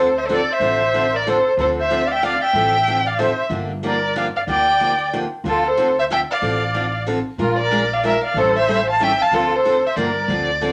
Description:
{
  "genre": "acoustic string swing (jazz manouche)",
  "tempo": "186 BPM",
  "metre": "3/4",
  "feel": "swing 61% on 8ths",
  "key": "D minor",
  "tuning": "A4 = 440 Hz",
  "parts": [
    { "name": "dark violin", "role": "melody", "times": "0.0-10.7 s", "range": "A4 to A5", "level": "-21 LUFS", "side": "equal", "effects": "none" },
    { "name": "musette accordion", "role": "second line", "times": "0.0-10.3 s", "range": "F4 to F5", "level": "-25 LUFS", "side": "equal", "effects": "none" },
    { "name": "picked steel-string acoustic guitar", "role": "accompaniment", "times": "0.0-10.7 s", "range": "D3 to Bb4", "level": "-27 LUFS", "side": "equal", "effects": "none" },
    { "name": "upright bass", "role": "bass", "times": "0.0-10.7 s", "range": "G1 to D2", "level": "-31 LUFS", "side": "equal", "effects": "none" }
  ],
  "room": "wet studio ambience, RT60 0.5 s",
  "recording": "none",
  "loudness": "-19 LUFS",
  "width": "mono",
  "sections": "0.0-10.7 A section",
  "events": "none",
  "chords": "0.0 Dm9; 3.5 Gm7; 5.4 Dm7; 7.4 Bb7; 8.4 A7#9; 9.3 Dm7; 10.0 Gm7"
}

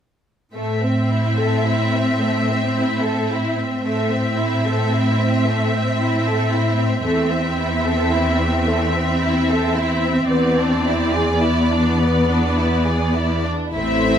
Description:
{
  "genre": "classical, slow romantic movement for string orchestra",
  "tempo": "49-57 BPM",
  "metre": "3/4",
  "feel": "rubato",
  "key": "A minor",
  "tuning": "A4 = 439 Hz",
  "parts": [
    { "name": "rich symphonic violin section", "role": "second line", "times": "0.5-14.2 s", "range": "A3 to C5", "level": "-23 LUFS", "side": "equal", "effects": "none" },
    { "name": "clear symphonic viola section", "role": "accompaniment", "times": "0.5-14.2 s", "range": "A3 to C4", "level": "-22 LUFS", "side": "left 1 dB", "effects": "none" },
    { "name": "rich symphonic cello section", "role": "bass", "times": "0.5-14.2 s", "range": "E2 to A2", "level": "-21 LUFS", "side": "right 1 dB", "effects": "none" },
    { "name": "clear symphonic violin section", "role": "melody", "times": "0.6-14.2 s", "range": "D5 to E5", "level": "-25 LUFS", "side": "left 1 dB", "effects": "none" },
    { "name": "rich studio double bass section", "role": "bass", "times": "13.7-14.2 s", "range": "A1", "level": "-25 LUFS", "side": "equal", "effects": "none" }
  ],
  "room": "light reverb",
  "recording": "close, detailed microphones",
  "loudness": "-16 LUFS",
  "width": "side -8 dB against mid",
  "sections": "0.5-13.7 A section",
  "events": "none",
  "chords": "0.5 Am; 7.0 Am/E; 10.3 E7(no3)"
}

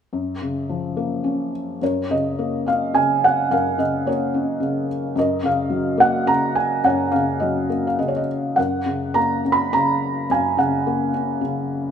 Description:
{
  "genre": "classical, lyrical solo piano",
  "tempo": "106 BPM",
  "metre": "3/4",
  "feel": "rubato",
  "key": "F# major",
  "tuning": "A4 = 440 Hz",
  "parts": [
    { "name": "felt-muted upright piano", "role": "solo", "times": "0.1-11.9 s", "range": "F#2 to B5", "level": "-18 LUFS", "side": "equal", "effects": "none" }
  ],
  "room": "moderate recital hall reverb, RT60 1.7 s",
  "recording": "minimal, uncompressed stereo recording",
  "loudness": "-18 LUFS",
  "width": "side -8 dB against mid",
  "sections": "0.1-1.8 A section; 1.8-11.9 B section",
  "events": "none",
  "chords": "0.1 F#maj7; 1.8 F#; 8.6 F#maj7"
}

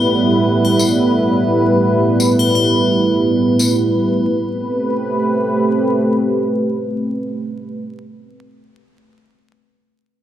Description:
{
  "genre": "trip hop",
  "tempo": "86 BPM",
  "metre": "4/4",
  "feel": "swing 56% on 16ths",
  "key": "A minor",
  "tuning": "A4 = 441 Hz",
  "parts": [
    { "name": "dark analog pad", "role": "sustained chords", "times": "0.0-7.8 s", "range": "A2 to B4", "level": "-14 LUFS", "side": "right 1 dB", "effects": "chorus" },
    { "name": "triangle and tambourine", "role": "percussion", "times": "0.6-3.7 s", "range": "none", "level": "-22 LUFS", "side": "left 6 dB", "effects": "none" }
  ],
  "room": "moderate plate reverb, RT60 3.1 s",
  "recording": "vinyl crackle",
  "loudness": "-13 LUFS",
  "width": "side -11 dB against mid",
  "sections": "0.0-4.3 A section; 4.3-7.1 B section",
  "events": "none",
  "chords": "0.0 Em/A; 4.3 Am9"
}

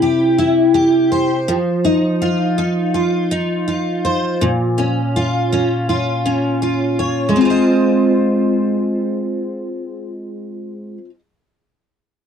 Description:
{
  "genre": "indie pop",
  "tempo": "82 BPM",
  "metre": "4/4",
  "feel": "swing 55% on 16ths",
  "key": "Ab major",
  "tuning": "A4 = 441 Hz",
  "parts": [
    { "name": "picked steel-string acoustic guitar", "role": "solo", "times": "0.0-11.2 s", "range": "Bb2 to Eb5", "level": "-15 LUFS", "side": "equal", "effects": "ensemble chorus, vibrato effect" }
  ],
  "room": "light reverb",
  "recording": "dry, close 1970s-style studio recording",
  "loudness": "-14 LUFS",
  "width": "side -8 dB against mid",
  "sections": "0.0-7.3 A section; 7.3-10.3 B section",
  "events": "none",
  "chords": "0.0 C; 1.5 F5; 4.4 Bbm; 7.3 Ab6"
}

